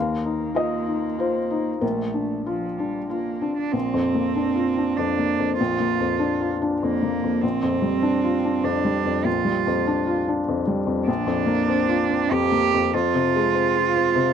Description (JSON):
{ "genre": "neoclassical piano and strings", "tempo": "98 BPM", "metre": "3/4", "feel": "rubato", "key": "Bb major", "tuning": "A4 = 440 Hz", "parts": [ { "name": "warm cello", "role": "second line", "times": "0.0-14.3 s", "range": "F3 to G4", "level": "-24 LUFS", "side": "right 10 dB", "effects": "none" }, { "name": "felt-muted upright piano", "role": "accompaniment", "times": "0.0-14.3 s", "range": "Bb1 to F5", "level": "-22 LUFS", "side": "left 4 dB", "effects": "none" } ], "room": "little or no reverb", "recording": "dry, close 1970s-style studio recording", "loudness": "-20 LUFS", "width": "side -8 dB against mid", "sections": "0.0-3.7 A section; 3.7-14.3 B section", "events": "none", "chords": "0.0 Ebsus2; 1.8 Bbmaj7; 7.4 Gm7/Bb; 11.1 Bbadd9; 12.9 Fm" }